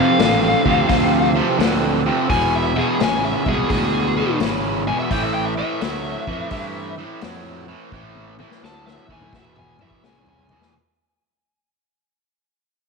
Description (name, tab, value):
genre	blues rock power trio and southern rock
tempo	85 BPM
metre	4/4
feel	swing 66% on 8ths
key	A minor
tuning	A4 = 439 Hz
part	biting lead guitar	melody	0.0-10.7 s	G#4 to A5	-23 LUFS	left 4 dB	overdrive
part	overdriven tonewheel organ	sustained chords	0.0-10.7 s	E3 to G5	-31 LUFS	right 12 dB	slow rotary speaker, chorus vibrato
part	cranked stack guitar	riff	0.0-10.7 s	E2 to F#3	-20 LUFS	right 1 dB	overdrive
part	growling fingered electric bass	bass	0.2-10.5 s	E1 to G2	-26 LUFS	right 2 dB	overdrive
part	vintage drum kit	drums	0.2-10.7 s	hi-hat, kick drum, snare drum, toms	-24 LUFS	left 4 dB	none
room	light reverb, small room reverb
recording	1960s-style stereo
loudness	-17 LUFS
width	side -4 dB against mid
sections	0.0-10.7 A section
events	fade-out 0.0-10.7; lead electric guitar solo 0.0-10.7; drum fill 7.9-10.7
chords	0.0 Fmaj7; 2.3 E7b9; 5.1 Am9; 9.3 E7b9